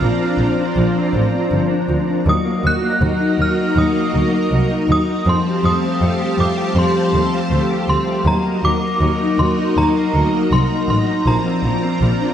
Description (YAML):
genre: dream pop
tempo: 80 BPM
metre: 4/4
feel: straight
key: unclear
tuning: A4 = 439 Hz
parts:
  - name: synth chime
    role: melody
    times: 0.0-12.3 s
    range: Bb5 to Gb6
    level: -22 LUFS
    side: right 1 dB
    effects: ensemble chorus, digital delay
  - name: string machine, cellos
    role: sustained chords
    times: 0.0-12.3 s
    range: F4 to Bb5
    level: -21 LUFS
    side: right 1 dB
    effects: ensemble chorus
  - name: mellow electric guitar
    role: arpeggios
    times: 0.0-12.3 s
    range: F3 to G4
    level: -19 LUFS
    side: left 2 dB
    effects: ensemble chorus, digital delay
  - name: warm double bass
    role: bass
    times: 0.0-12.1 s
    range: G1 to F2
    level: -19 LUFS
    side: right 1 dB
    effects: none
room: moderate recital hall reverb, RT60 1.4 s, digital ambience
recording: dark, warm production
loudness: -14 LUFS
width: side -9 dB against mid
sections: 0.0-12.3 A section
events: none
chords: 0.0 Bbadd9; 2.3 Ebm; 5.3 Fadd9; 8.3 Ebm; 11.3 Bbadd9